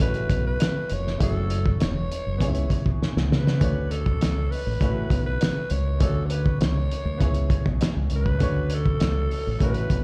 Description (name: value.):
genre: lush 1970s-style soul.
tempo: 100 BPM.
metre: 4/4.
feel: straight.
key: unclear.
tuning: A4 = 440 Hz.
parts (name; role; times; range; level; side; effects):
breathy alto saxophone; melody; 0.0-10.0 s; A4 to C#5; -34 LUFS; equal; none.
bright baby grand piano; accompaniment; 0.0-10.0 s; A3 to C#5; -36 LUFS; equal; none.
fingered electric bass; bass; 0.0-10.0 s; E1 to C#3; -27 LUFS; equal; none.
cloth-damped thuddy drum kit; drums; 0.0-10.0 s; hi-hat, kick drum, snare drum; -26 LUFS; equal; none.
room: small room reverb.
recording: live gig heard through the venue's PA, club reverb.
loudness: -24 LUFS.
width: mono.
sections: 0.0-10.0 A section.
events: drum fill 3.0-3.6.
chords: 0.0 A69; 1.2 F#m7; 2.4 C#m7; 3.6 Dmaj7; 4.8 A69; 6.0 Dmaj7; 7.2 C#m7; 8.4 Dmaj7.